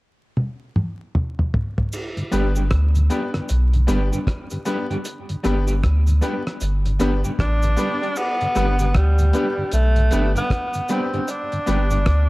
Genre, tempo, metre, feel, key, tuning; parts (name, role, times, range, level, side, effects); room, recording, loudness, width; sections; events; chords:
roots reggae; 77 BPM; 4/4; swing 61% on 16ths; G major; A4 = 440 Hz
cloth-damped thuddy drum kit; drums; 0.4-12.3 s; crash cymbal, hi-hat, kick drum, rim click, toms; -24 LUFS; equal
cabasa; percussion; 1.9-12.0 s; -38 LUFS; right 1 dB
mellow tonewheel organ; accompaniment; 2.2-12.0 s; G2 to D4; -30 LUFS; left 1 dB; chorus vibrato, tape echo
electric guitar at the edge of break-up; accompaniment; 2.3-12.0 s; G3 to G4; -29 LUFS; right 1 dB; analog chorus, tape echo
bright baby grand piano; stabs; 2.3-11.9 s; B3 to B4; -28 LUFS; left 2 dB
warm sub bass; bass; 2.3-12.3 s; G1 to D2; -18 LUFS; equal
breathy tenor saxophone; melody; 7.4-12.3 s; G3 to D4; -23 LUFS; equal; tape echo
light reverb, small room ambience; echo-heavy mix, vinyl crackle; -18 LUFS; side -21 dB against mid
0.0-1.9 A section; 1.9-8.2 B section; 8.2-12.3 C section
drum fill 0.4-1.9
0.0 N.C.; 1.9 G